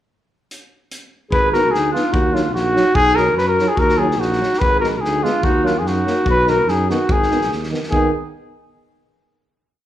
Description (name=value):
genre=balkan folk, Balkan brass band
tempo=145 BPM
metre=2/4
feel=swing 53% on 16ths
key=Ab dorian sharp4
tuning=A4 = 439 Hz
part: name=loose indie drum kit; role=percussion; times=0.5-8.1 s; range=hi-hat, kick drum, snare drum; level=-24 LUFS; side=equal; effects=none
part: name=mellow trumpet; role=melody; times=1.3-8.1 s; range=F4 to B4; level=-17 LUFS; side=left 1 dB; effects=slapback echo
part: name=mellow clarinet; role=second line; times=1.3-8.1 s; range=D4 to Ab4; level=-24 LUFS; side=left 1 dB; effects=slapback echo
part: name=mellow tuba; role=bass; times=1.3-8.1 s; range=Ab1 to Gb2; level=-22 LUFS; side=equal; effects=none
part: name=mellow euphonium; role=accompaniment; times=1.5-8.1 s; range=Eb3 to Cb4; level=-25 LUFS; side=right 5 dB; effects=slapback echo
part: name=mellow French horn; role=accompaniment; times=1.6-8.1 s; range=Bb3 to D#4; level=-28 LUFS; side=left 5 dB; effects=slapback echo
room=light reverb, small room ambience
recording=live gig heard through the venue's PA, club reverb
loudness=-14 LUFS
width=side -12 dB against mid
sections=0.5-1.3 pickup bar; 1.3-7.9 A section; 7.9-8.7 final chord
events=none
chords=0.5 N.C.; 1.3 Abm; 2.1 Ebm; 3.0 B; 3.8 Ebm; 4.6 Abm; 5.4 Ebm; 6.3 B; 7.1 Abm